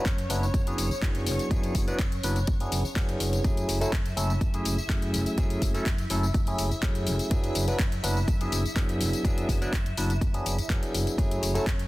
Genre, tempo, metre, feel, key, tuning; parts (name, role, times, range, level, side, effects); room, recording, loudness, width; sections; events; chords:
filtered disco house; 124 BPM; 4/4; straight; A4 = 435 Hz
barky tine electric piano; accompaniment; 0.0-11.7 s; F#3 to B4; -31 LUFS; equal; phaser, sidechain pumping
string machine, full ensemble; sustained chords; 0.0-11.9 s; C#5 to E5; -38 LUFS; equal; ensemble chorus, vintage 12-bit sampler grit, sidechain pumping
overdriven fingered electric bass; bass; 0.1-11.8 s; F#1 to F#2; -30 LUFS; equal; sidechain pumping
electronic kick drum; drums; 0.1-11.8 s; -27 LUFS; equal
house drum kit; drums; 0.1-11.9 s; handclaps, hi-hat, tambourine; -34 LUFS; left 2 dB; sidechain pumping on hats, sidechain pumping on cymbals, sidechain pumping on perc
little or no reverb; dense, heavily limited modern master; -24 LUFS; side -18 dB against mid
0.0-11.9 A section
0.0 E9/F#; 3.4 F#m7; 7.3 E9/F#; 11.2 F#m7